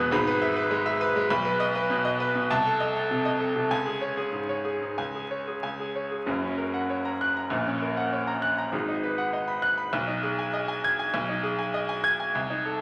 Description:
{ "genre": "classical, virtuoso piano study", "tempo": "99 BPM", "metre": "2/4", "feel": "rubato", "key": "F# major", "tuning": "A4 = 438 Hz", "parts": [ { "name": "clear grand piano", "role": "solo", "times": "0.0-12.8 s", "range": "E1 to G#6", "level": "-27 LUFS", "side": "equal", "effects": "none" } ], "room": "wet recital hall reverb, RT60 1.4 s", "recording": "vinyl crackle", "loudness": "-27 LUFS", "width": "mono", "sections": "0.0-6.3 A section; 6.3-12.8 B section", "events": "none", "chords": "0.1 E/G#; 1.3 B; 2.5 Cm6; 3.7 C#5; 6.3 F#; 7.5 F#/A#; 8.7 G#m7; 9.9 G#m/B" }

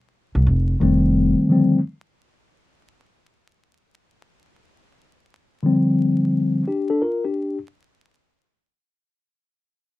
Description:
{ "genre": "hip hop", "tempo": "87 BPM", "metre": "4/4", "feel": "swing 65% on 16ths", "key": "unclear", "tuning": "A4 = 440 Hz", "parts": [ { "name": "upright bass", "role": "bass", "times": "0.3-1.3 s", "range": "F1 to C2", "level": "-18 LUFS", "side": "equal", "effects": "none" }, { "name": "mellow tine electric piano", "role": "accompaniment", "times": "0.8-7.6 s", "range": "D3 to Bb4", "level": "-17 LUFS", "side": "left 2 dB", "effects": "medium stereo tremolo" } ], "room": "little or no reverb", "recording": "dry, close 1970s-style studio recording, vinyl crackle", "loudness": "-17 LUFS", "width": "side -17 dB against mid", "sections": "0.0-7.4 A section", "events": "none", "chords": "0.5 F7; 1.8 Dmadd11" }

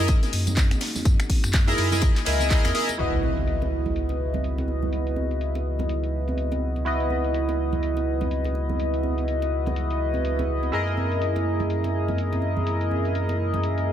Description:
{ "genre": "deep house", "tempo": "124 BPM", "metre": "4/4", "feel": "swing 59% on 16ths", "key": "C# dorian", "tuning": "A4 = 440 Hz", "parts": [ { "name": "dark analog pad", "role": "sustained chords", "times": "0.0-13.9 s", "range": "A#3 to D#5", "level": "-36 LUFS", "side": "equal", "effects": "chorus, sidechain pumping" }, { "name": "chorused polysynth", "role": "stabs", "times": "0.0-13.9 s", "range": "E4 to D#5", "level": "-26 LUFS", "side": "equal", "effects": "sidechain pumping, ping-pong delay" }, { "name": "warm sub bass", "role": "bass", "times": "0.0-13.9 s", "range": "F#1 to F#2", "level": "-26 LUFS", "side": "equal", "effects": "sidechain pumping" }, { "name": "big rock drum kit", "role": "drums", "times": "0.1-3.0 s", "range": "ride cymbal, snare drum", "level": "-38 LUFS", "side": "left 3 dB", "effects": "sidechain pumping on cymbals, high-pass filter on cymbals, sidechain pumping on hats, high-pass filter on hats, high-pass filter on snare, high-pass filter on room" }, { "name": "electronic kick drum", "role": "drums", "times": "0.1-2.6 s", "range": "none", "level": "-20 LUFS", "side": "equal", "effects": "none" }, { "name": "punchy analog drum machine", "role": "drums", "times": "0.1-13.9 s", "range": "crash cymbal, finger snaps, handclaps, hi-hat, tambourine", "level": "-32 LUFS", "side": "left 1 dB", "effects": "low-pass filter on hats, low-pass filter on perc, low-pass filter on snare, low-pass filter on cymbals" }, { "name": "congas", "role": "percussion", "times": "0.2-13.6 s", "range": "none", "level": "-34 LUFS", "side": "right 4 dB", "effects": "sidechain pumping on perc" }, { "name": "impact", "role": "sound effects", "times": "3.0-4.9 s", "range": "none", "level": "-31 LUFS", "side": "equal", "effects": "none" } ], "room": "small room ambience", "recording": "none", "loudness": "-22 LUFS", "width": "side -10 dB against mid", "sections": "0.0-3.0 A section; 3.0-13.9 B section", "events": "impact 3.0-4.9", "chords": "0.0 F#13; 3.0 C#m11; 10.7 F#13" }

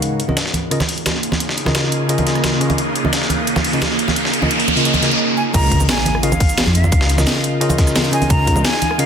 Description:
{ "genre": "liquid drum and bass", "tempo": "174 BPM", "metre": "4/4", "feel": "straight", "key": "Db major", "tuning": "A4 = 440 Hz", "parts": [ { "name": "bell-like tine electric piano", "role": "accompaniment", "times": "0.0-9.1 s", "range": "Db3 to F5", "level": "-21 LUFS", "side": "left 1 dB", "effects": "ping-pong delay" }, { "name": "shimmering ambient pad", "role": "sustained chords", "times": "0.0-9.1 s", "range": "Db3 to Ab4", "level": "-23 LUFS", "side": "right 2 dB", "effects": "chorus, built-in reverb, sidechain pumping" }, { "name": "drum and bass drum kit", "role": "drums", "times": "0.0-9.1 s", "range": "cabasa, crash cymbal, hi-hat, rim click, snare drum", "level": "-22 LUFS", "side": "right 1 dB", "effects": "overdrive, studio reverb" }, { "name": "dusty soul sampler-style drum kit", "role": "drums", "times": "0.0-9.1 s", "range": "hi-hat, snare drum", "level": "-22 LUFS", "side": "left 1 dB", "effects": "high-pass filter on hats, studio reverb, high-pass filter on snare" }, { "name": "riser, noise sweep and impact", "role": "sound effects", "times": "1.9-6.9 s", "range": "none", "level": "-22 LUFS", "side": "equal", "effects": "none" }, { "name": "congas", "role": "percussion", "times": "0.3-8.9 s", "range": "none", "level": "-23 LUFS", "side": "right 2 dB", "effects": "none" }, { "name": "breathy bright jazz flute", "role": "melody", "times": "5.4-9.1 s", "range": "F5 to Bb5", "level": "-22 LUFS", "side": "right 1 dB", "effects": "ping-pong delay" }, { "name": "dark detuned saw bass", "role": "bass", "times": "5.5-8.6 s", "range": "Db2 to F2", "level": "-16 LUFS", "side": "equal", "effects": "none" }, { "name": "electronic kick drum", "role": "drums", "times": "5.5-8.5 s", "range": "none", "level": "-16 LUFS", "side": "equal", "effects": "overdrive, studio reverb" } ], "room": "moderate lush hall reverb, RT60 1.6 s, digital ambience", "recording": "dense, heavily limited modern master", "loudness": "-14 LUFS", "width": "side -7 dB against mid", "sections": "0.0-5.5 A section; 5.5-9.1 B section", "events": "build-up 0.0-5.5; riser 1.9-5.2; noise sweep 4.2-5.5; break 5.2-5.5; drop 5.5-9.1; impact 5.5-6.9", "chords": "0.0 Db69" }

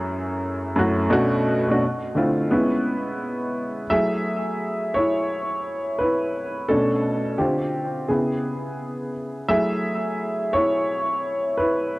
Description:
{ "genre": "hip hop", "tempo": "86 BPM", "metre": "4/4", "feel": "swing 63% on 16ths", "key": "F# minor", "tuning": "A4 = 440 Hz", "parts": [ { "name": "warm upright piano", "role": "solo", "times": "0.0-12.0 s", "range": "F#2 to E5", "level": "-21 LUFS", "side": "equal", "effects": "low-pass filter, tape echo" } ], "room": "moderate spring reverb, RT60 2.8 s", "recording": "none", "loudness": "-21 LUFS", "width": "side -21 dB against mid", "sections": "0.0-3.9 A section; 3.9-12.0 B section", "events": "upright piano solo 3.9-12.0", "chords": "0.0 F#m9; 1.1 Bm9; 1.8 Dm7; 2.5 C#m7; 3.9 F#m9; 6.7 Bm9; 7.4 Dm7; 8.1 C#m7; 9.5 F#m9" }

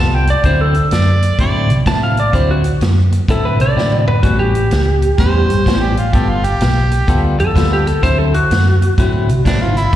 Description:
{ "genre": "electric blues shuffle", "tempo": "126 BPM", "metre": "4/4", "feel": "swing 65% on 8ths", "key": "D mixolydian", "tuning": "A4 = 442 Hz", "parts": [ { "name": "lightly driven lead guitar", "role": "melody", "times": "0.0-9.7 s", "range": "F#4 to A5", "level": "-18 LUFS", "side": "equal", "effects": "slapback echo" }, { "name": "clean electric guitar", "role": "riff", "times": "0.0-9.8 s", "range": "A2 to A4", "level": "-20 LUFS", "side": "left 2 dB", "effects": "wide subtle chorus, slapback echo" }, { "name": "vintage muted fingered electric bass", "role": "bass", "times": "0.0-10.0 s", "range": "G1 to C3", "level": "-14 LUFS", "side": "equal", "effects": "none" }, { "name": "vintage drum kit", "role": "drums", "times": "0.3-10.0 s", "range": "hi-hat, kick drum, snare drum, toms", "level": "-18 LUFS", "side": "equal", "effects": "none" }, { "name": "mellow harmonica", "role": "second line", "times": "0.9-1.8, 5.2-10.0 s", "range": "D4 to D5", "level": "-20 LUFS", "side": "right 2 dB", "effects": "slapback echo" } ], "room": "light reverb", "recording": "live gig heard through the venue's PA, recital hall reverb", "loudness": "-11 LUFS", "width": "side -12 dB against mid", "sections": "0.0-10.0 A section", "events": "drum fill 3.8-4.2", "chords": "0.4 D9; 4.2 A9; 6.1 G9; 8.0 D9" }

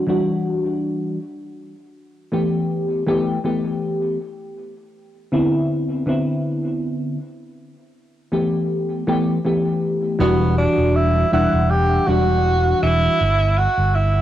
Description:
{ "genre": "vaporwave", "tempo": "80 BPM", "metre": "4/4", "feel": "straight", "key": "G major", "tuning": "A4 = 441 Hz", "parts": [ { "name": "mellow FM electric piano", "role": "accompaniment", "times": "0.0-13.2 s", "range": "D3 to F#5", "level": "-19 LUFS", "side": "left 1 dB", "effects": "lush chorus, analog delay" }, { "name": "mellow tenor saxophone", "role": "melody", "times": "10.2-14.2 s", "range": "B3 to G4", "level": "-19 LUFS", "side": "right 3 dB", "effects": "analog delay" }, { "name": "fretless electric bass", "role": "bass", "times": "10.2-14.2 s", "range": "E1 to G1", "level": "-19 LUFS", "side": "equal", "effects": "tube saturation, lush chorus" } ], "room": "light reverb, studio reverb", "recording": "dry, gritty hardware recording, cassette tape", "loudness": "-17 LUFS", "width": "side -12 dB against mid", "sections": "0.0-10.2 A section; 10.2-14.2 B section", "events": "none", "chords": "0.0 Em9; 1.2 G69; 4.2 Cmaj9; 7.2 G69; 10.2 Em9; 13.2 G5" }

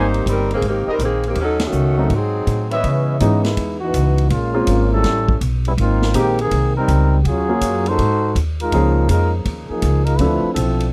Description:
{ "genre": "jazz, big band swing", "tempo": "163 BPM", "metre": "4/4", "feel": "swing 66% on 8ths", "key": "Ab major", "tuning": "A4 = 440 Hz", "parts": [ { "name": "warm saxophone section", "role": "melody", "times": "0.0-2.7 s", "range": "Eb3 to C5", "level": "-22 LUFS", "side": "equal", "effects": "none" }, { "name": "warm baby grand piano", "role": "accompaniment", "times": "0.0-10.9 s", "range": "Fb3 to A4", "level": "-23 LUFS", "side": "equal", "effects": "none" }, { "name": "mellow trumpet section", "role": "stabs", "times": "0.0-3.2 s", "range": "G4 to Fb5", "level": "-24 LUFS", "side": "equal", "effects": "none" }, { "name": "upright bass", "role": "bass", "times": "0.0-10.9 s", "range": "G1 to Db3", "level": "-21 LUFS", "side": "equal", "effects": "none" }, { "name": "swinging big-band drum kit", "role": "drums", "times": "0.1-10.9 s", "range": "hi-hat, kick drum, ride cymbal, snare drum", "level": "-28 LUFS", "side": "equal", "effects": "none" }, { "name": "warm trombone section", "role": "second line", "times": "2.7-10.9 s", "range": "Eb3 to C5", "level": "-22 LUFS", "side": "equal", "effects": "none" } ], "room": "little or no reverb", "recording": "dry, close 1970s-style studio recording", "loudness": "-18 LUFS", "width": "mono", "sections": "0.0-2.8 A section; 2.8-10.9 B section", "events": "band accent 1.5; trombone section solo 2.8-10.9", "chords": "0.0 Abmaj9; 1.4 Ebm7b5; 2.1 Ab7b9; 2.8 Dbm9; 4.3 Bbm7; 5.0 A9; 5.8 Abmaj9; 7.2 Ebm11; 8.0 Ab7b9; 8.7 Db69; 10.2 Dm9" }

